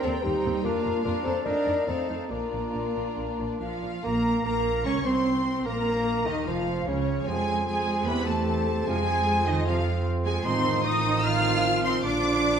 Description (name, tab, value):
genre	classical, dramatic, fast romantic movement for symphony orchestra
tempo	150 BPM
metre	4/4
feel	rubato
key	Bb major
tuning	A4 = 439 Hz
part	rich symphonic violin section	melody	0.0-12.6 s	Db5 to F6	-34 LUFS	left 2 dB	none
part	hollow flute section	second line	0.0-12.6 s	Db5 to F6	-33 LUFS	right 1 dB	none
part	mellow clarinet	second line	0.0-12.6 s	Db4 to Db5	-35 LUFS	left 1 dB	none
part	rich studio violin section	second line	0.0-12.6 s	Eb4 to F6	-36 LUFS	left 2 dB	none
part	rich symphonic viola section	accompaniment	0.0-12.6 s	A3 to F5	-34 LUFS	right 1 dB	none
part	warm bassoon	accompaniment	0.0-12.6 s	Db3 to Eb4	-34 LUFS	right 3 dB	none
part	mellow French horn section	sustained chords	0.0-12.6 s	Db3 to D5	-32 LUFS	left 4 dB	none
part	rich symphonic cello section	bass	0.0-12.6 s	Db3 to F4	-31 LUFS	right 2 dB	none
part	warm studio double bass section	bass	0.0-12.6 s	F1 to F2	-31 LUFS	right 3 dB	none
part	mellow trombone section	sustained chords	4.0-12.6 s	C3 to Db4	-32 LUFS	right 2 dB	none
room	wet recital hall reverb, RT60 1.6 s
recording	dark, warm production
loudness	-23 LUFS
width	side -7 dB against mid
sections	0.0-4.0 A section; 4.0-12.6 B section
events	none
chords	0.0 Cm7/Eb; 0.6 Bb/F; 1.5 F7; 2.3 Bb; 4.0 N.C.; 5.7 Bbm; 7.3 Fm; 8.1 C/E; 8.9 Fm; 10.4 F7/A; 12.0 Bb